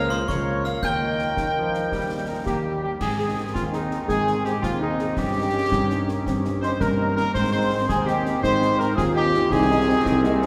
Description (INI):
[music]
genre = military-style march for wind band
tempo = 110 BPM (dotted quarters)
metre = 6/8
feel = straight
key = Ab major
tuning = A4 = 440 Hz
[part]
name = mellow cornet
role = melody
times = 0.0-10.5 s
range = Eb4 to G5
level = -30 LUFS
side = equal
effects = none
[part]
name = clear woodwind section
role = second line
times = 0.0-10.5 s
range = Eb4 to G5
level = -32 LUFS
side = equal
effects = none
[part]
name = glockenspiel with brass mallets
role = second line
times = 0.0-2.4 s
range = C6 to G6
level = -35 LUFS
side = equal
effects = none
[part]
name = mellow hollow large flute ensemble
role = second line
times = 0.0-10.5 s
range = Ab4 to C6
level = -33 LUFS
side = equal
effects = none
[part]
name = mellow French horn section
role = accompaniment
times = 0.0-10.5 s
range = Ab3 to Bb4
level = -35 LUFS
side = equal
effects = none
[part]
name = mellow trombone section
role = sustained chords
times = 0.0-10.5 s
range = Eb3 to Db4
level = -32 LUFS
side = equal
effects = none
[part]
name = mellow tuba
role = bass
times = 0.0-10.5 s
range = C2 to Ab2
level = -29 LUFS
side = equal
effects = none
[part]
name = concert snare drum, concert bass drum and clash cymbals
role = drums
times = 0.1-10.5 s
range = none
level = -35 LUFS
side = equal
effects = none
[part]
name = dark euphonium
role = second line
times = 3.5-10.5 s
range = Ab3 to F4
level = -31 LUFS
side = equal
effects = none
[sound]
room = wet church reverb, RT60 3.6 s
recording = recorded in a church or concert hall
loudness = -23 LUFS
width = mono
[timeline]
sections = 0.0-3.0 A section; 3.0-10.5 B section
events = none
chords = 0.0 Bbm/Db; 0.8 Eb; 3.0 Ab; 5.2 Eb7/G; 7.3 Ab; 9.5 Ab/C